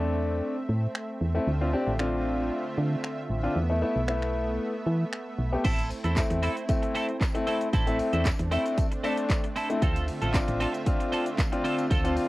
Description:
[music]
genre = dance-pop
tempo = 115 BPM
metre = 4/4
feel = straight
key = A minor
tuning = A4 = 440 Hz
[part]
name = clear concert grand piano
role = accompaniment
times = 0.0-12.3 s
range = A3 to G4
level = -28 LUFS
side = left 2 dB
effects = sidechain pumping, cassette tape
[part]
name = soft supersaw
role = sustained chords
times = 0.0-12.3 s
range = D3 to E5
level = -35 LUFS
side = right 1 dB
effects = sidechain pumping, cassette tape
[part]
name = solid FM bass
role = bass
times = 0.0-12.2 s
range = A1 to E3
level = -28 LUFS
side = equal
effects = sidechain pumping
[part]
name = pop drum kit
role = drums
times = 1.0-12.3 s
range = crash cymbal, finger snaps, handclaps, hi-hat, kick drum, shaker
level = -28 LUFS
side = equal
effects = cassette tape
[part]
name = twelve-string electric guitar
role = riff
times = 5.6-12.2 s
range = C4 to A4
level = -31 LUFS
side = right 2 dB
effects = analog chorus, cassette tape
[part]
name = tambourine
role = percussion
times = 5.6-12.3 s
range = none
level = -49 LUFS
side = left 4 dB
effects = none
[sound]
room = light reverb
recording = home recording on cassette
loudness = -25 LUFS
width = side -18 dB against mid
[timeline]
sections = 0.0-5.6 A section; 5.6-12.3 B section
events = none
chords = 0.0 Am; 1.5 Dm7; 3.6 Esus4; 5.6 Am; 9.8 Dm7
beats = 0.43 0.95 | 1.47 2.00 2.52 3.04 | 3.56 4.08 4.60 5.13 | 5.65 6.17 6.69 7.21 | 7.74 8.26 8.78 9.30 | 9.82 10.34 10.87 11.39 | 11.91

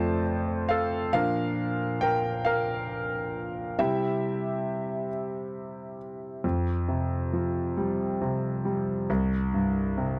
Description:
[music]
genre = pop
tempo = 45 BPM (dotted quarters)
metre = 6/8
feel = straight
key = F major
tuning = A4 = 440 Hz
[part]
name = clear concert grand piano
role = solo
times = 0.0-10.2 s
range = C2 to A5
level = -28 LUFS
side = equal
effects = none
[sound]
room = studio ambience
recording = dry, close 1970s-style studio recording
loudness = -28 LUFS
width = mono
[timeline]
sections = 0.0-6.4 A section; 6.4-10.2 B section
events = grand piano solo 0.0-6.4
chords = 0.0 Dm/F; 1.1 Bb; 3.8 C; 6.4 Fsus2; 9.1 C5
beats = | 1.14 2.46 | 3.79 5.12 | 6.44 7.77 | 9.10

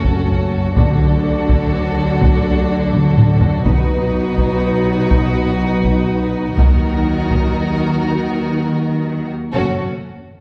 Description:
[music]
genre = cinematic, epic orchestral film score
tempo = 82 BPM (dotted quarters)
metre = 6/8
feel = straight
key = unclear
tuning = A4 = 442 Hz
[part]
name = warm symphonic violin section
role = melody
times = 0.0-9.8 s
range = A4 to B4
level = -29 LUFS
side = equal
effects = none
[part]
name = rich symphonic violin section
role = second line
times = 0.0-9.8 s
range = F#4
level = -28 LUFS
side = equal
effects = none
[part]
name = dark symphonic viola section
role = accompaniment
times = 0.0-9.8 s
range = C#4 to D#4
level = -29 LUFS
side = equal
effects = none
[part]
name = dark French horn section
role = sustained chords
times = 0.0-9.7 s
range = F#3 to D#4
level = -24 LUFS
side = equal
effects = none
[part]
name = rich studio cello section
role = bass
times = 0.0-9.8 s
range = F#2 to D#3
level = -24 LUFS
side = equal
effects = none
[part]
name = rich studio double bass section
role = bass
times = 0.0-9.8 s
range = F#1 to D#2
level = -25 LUFS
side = equal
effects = none
[part]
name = taiko ensemble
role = drums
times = 0.0-7.8 s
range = none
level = -19 LUFS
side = equal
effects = none
[part]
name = timpani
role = percussion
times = 9.5-9.8 s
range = F#2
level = -43 LUFS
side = equal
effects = none
[sound]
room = wet scoring stage reverb, RT60 1.5 s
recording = heard from further back in the room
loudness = -16 LUFS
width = mono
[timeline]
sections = 0.0-9.5 A section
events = drum fill 2.9-3.7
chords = 0.0 F#m; 0.8 D; 3.7 B; 6.6 D#m; 9.5 F#m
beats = 0.04 | 0.76 1.48 | 2.21 2.93 | 3.65 4.38 | 5.11 5.84 | 6.57 7.31 | 8.05 8.79 | 9.53

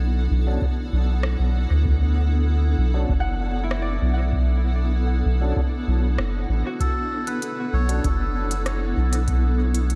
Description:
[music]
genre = ambient dub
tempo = 97 BPM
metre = 4/4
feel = straight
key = B minor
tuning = A4 = 440 Hz
[part]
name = granular cloud pad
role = sustained chords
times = 0.0-10.0 s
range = B3 to F#5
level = -31 LUFS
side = equal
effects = built-in reverb
[part]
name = soft dub sub bass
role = bass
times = 0.0-10.0 s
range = F#1 to D2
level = -23 LUFS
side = equal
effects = none
[part]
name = mellow tonewheel organ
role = stabs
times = 0.5-8.1 s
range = C#4 to A4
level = -38 LUFS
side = equal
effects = overdrive, fast rotary speaker, dub echo
[part]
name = electronic kick drum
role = drums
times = 0.6-9.4 s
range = none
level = -27 LUFS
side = equal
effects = studio reverb
[part]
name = organic electronic drum kit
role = drums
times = 1.2-10.0 s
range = hi-hat, rim click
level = -37 LUFS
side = equal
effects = studio reverb, dub echo
[part]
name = Celtic harp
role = arpeggios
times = 3.2-9.1 s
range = E4 to F#5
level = -38 LUFS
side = equal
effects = vintage 12-bit sampler grit, delay
[part]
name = melodica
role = melody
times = 6.8-8.6 s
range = A4 to C#5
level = -33 LUFS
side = equal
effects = delay
[sound]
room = light reverb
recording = none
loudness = -22 LUFS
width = mono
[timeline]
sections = 0.0-10.0 A section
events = none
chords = 0.0 Bm9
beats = 0.00 0.62 1.24 | 1.85 2.47 3.09 3.71 | 4.33 4.95 5.57 6.18 | 6.80 7.42 8.04 8.66 | 9.28 9.90

